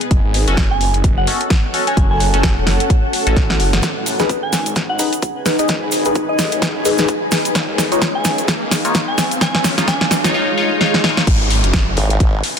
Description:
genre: bass house.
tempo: 129 BPM.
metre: 4/4.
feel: swing 58% on 16ths.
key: G# phrygian.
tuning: A4 = 440 Hz.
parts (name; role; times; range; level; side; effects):
house drum kit; drums; 0.0-12.6 s; crash cymbal, hi-hat, snare drum; -19 LUFS; equal; none.
granular cloud pad; texture; 0.0-12.6 s; B3 to G#5; -23 LUFS; equal; built-in reverb, sidechain pumping.
phased detuned saw bass; bass; 0.1-12.0 s; E1 to D#2; -20 LUFS; equal; phaser, tube saturation, sidechain pumping, high-pass filter.
electronic kick drum; drums; 0.1-12.3 s; none; -16 LUFS; equal; high-pass filter on kick.
band-passed chord stab; stabs; 0.5-11.2 s; C#4 to D#5; -21 LUFS; left 3 dB; phaser, sidechain pumping, ping-pong delay.
soft synth bell; melody; 0.7-10.1 s; D#5 to G#5; -24 LUFS; right 1 dB; chorus, phaser, ping-pong delay.
cabasa; percussion; 3.8-10.3 s; none; -27 LUFS; right 7 dB; none.
riser, swell and downlifter; sound effects; 5.3-12.6 s; none; -25 LUFS; right 1 dB; none.
formant-sweep wobble bass; bass; 12.0-12.4 s; G#1; -17 LUFS; equal; chorus, tube saturation, sidechain pumping.
room: light reverb.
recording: dense, heavily limited modern master.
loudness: -14 LUFS.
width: side -7 dB against mid.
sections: 0.0-3.8 A section; 3.8-11.3 B section; 11.3-12.6 C section.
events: filter sweep on detuned saw bass 0.0-3.8; drum fill 3.4-3.8, 3.8-10.3, 10.8-11.3; band accent 3.7; build-up 3.8-11.3; filter sweep on synth stab 3.8-11.3; riser 5.3-10.3; swell 10.3-11.3; drop 11.3-12.6.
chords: 0.1 F#m; 3.8 G#m; 7.6 C#add9; 11.3 G#m.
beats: | 0.11 0.57 1.04 1.50 | 1.97 2.44 2.90 3.37 | 3.83 4.29 4.76 5.22 | 5.69 6.16 6.62 7.09 | 7.55 8.02 8.48 8.95 | 9.41 9.88 10.34 10.81 | 11.27 11.74 12.20.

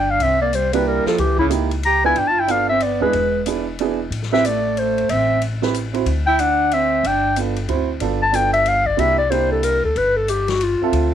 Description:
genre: jazz, small-group swing and bop.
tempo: 184 BPM.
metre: 3/4.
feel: swing 62% on 8ths.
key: G mixolydian.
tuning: A4 = 441 Hz.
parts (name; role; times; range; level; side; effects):
dark clarinet; melody; 0.0-11.1 s; E4 to A#5; -17 LUFS; left 2 dB; none.
warm alto saxophone; second line; 0.0-7.4 s; C#3 to G4; -24 LUFS; right 11 dB; none.
upright bass; bass; 0.0-11.1 s; E1 to Eb2; -24 LUFS; left 1 dB; none.
vintage drum kit; drums; 0.2-11.0 s; hi-hat, kick drum, ride cymbal, snare drum; -32 LUFS; left 9 dB; none.
dark baby grand piano; accompaniment; 0.7-11.1 s; Bb3 to E5; -23 LUFS; right 10 dB; none.
room: light reverb, small room ambience.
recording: 1960s-style stereo with parts hard left and right.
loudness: -16 LUFS.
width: side -10 dB against mid.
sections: 0.0-8.0 A section; 8.0-11.1 A section.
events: none.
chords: 0.2 C9; 1.2 C#dim7; 2.2 G9; 3.1 E7; 4.1 Am; 6.1 D9; 7.0 G9; 7.7 D9; 8.0 G9; 9.0 C9; 10.0 N.C..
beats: | 0.20 0.53 0.85 | 1.18 1.50 1.83 | 2.15 2.48 2.81 | 3.13 3.46 3.78 | 4.11 4.43 4.76 | 5.08 5.41 5.73 | 6.06 6.38 6.71 | 7.03 7.36 7.68 | 8.01 8.33 8.66 | 8.98 9.31 9.63 | 9.96 10.28 10.61 | 10.93.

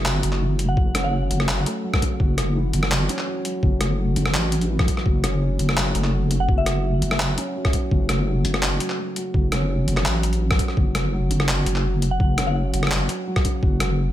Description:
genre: half-time drum and bass.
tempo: 168 BPM.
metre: 4/4.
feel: half-time.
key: F# minor.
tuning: A4 = 440 Hz.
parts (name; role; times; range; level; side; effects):
felt-muted upright piano; arpeggios; 0.0-14.1 s; C#3 to F#4; -28 LUFS; right 1 dB; ping-pong delay.
deep soft wobble bass; bass; 0.0-14.1 s; F#1 to A1; -22 LUFS; equal; chorus.
boom bap sampler-style drum kit; drums; 0.1-13.9 s; handclaps, hi-hat, rim click; -25 LUFS; equal; none.
soft synth bell; melody; 0.7-1.4, 6.4-7.1, 12.1-12.8 s; E5 to F#5; -30 LUFS; left 1 dB; chorus, ping-pong delay.
electronic kick drum; drums; 0.8-13.7 s; none; -20 LUFS; equal; none.
room: light reverb.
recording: none.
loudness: -19 LUFS.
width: side -12 dB against mid.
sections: 0.0-14.1 A section.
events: none.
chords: 0.0 F#5.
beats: 0.06 0.41 | 0.77 1.13 1.49 1.84 | 2.20 2.56 2.91 3.27 | 3.63 3.98 4.34 4.70 | 5.06 5.41 5.77 6.13 | 6.49 6.84 7.20 7.56 | 7.91 8.27 8.63 8.98 | 9.34 9.70 10.06 10.41 | 10.77 11.13 11.48 11.84 | 12.20 12.56 12.91 13.27 | 13.63 13.98.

